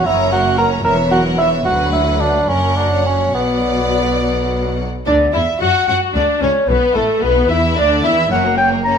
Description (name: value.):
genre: quick classical-period movement for symphony orchestra.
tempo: 69-76 BPM (dotted quarters).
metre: 6/8.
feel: rubato.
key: B minor.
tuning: A4 = 440 Hz.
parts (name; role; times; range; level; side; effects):
rich studio violin section; melody; 0.0-9.0 s; A4 to A#5; -25 LUFS; left 1 dB; none.
rich studio violin section; second line; 0.0-9.0 s; A3 to D5; -22 LUFS; left 2 dB; none.
rich studio viola section; accompaniment; 0.0-9.0 s; E3 to F#4; -23 LUFS; left 1 dB; none.
warm bassoon; accompaniment; 0.0-4.8 s; B3 to A#4; -17 LUFS; right 2 dB; none.
clear studio cello section; bass; 0.1-9.0 s; D2 to F#3; -23 LUFS; equal; none.
rich studio double bass section; bass; 0.1-9.0 s; E1 to F#2; -21 LUFS; equal; none.
mellow clarinet; second line; 5.1-9.0 s; A4 to A#5; -16 LUFS; left 1 dB; none.
room: wet stone room reverb, RT60 1.0 s.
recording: minimal, uncompressed stereo recording.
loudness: -13 LUFS.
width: side -7 dB against mid.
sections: 0.0-5.1 A section; 5.1-9.0 A section.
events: none.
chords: 0.1 F#; 0.8 F#7/E; 1.7 Bm/D; 2.5 F#; 3.3 Bm; 5.1 Dmaj9; 6.7 Asus24; 8.3 F#.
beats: | 0.06 0.85 | 1.66 2.49 | 3.35 4.21 | 5.06 5.88 | 6.68 7.50 | 8.31.